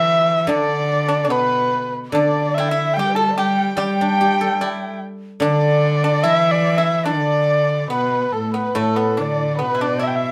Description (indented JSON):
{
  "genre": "chinese traditional, Chinese chamber ensemble",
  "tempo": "72 BPM",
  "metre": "2/4",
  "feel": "rubato",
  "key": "D zhi mode",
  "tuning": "A4 = 442 Hz",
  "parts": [
    { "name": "dark erhu", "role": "melody", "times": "0.0-10.3 s", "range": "A4 to A5", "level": "-22 LUFS", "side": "equal", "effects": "none" },
    { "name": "breathy large dizi", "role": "second line", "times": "0.0-10.3 s", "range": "D4 to A5", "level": "-26 LUFS", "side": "equal", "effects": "none" },
    { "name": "pipa", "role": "second line", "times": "0.0-10.3 s", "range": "A3 to A4", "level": "-28 LUFS", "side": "equal", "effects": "none" },
    { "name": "warm cello", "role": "second line", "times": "0.0-10.3 s", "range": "A2 to G3", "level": "-25 LUFS", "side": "equal", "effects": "none" },
    { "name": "guzheng", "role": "accompaniment", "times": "0.0-10.3 s", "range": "A2 to D5", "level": "-28 LUFS", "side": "equal", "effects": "none" }
  ],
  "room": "moderate studio reverb, RT60 0.7 s",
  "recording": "none",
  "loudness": "-19 LUFS",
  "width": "mono",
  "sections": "0.0-8.8 A section; 8.8-10.3 B section",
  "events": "none",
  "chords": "none"
}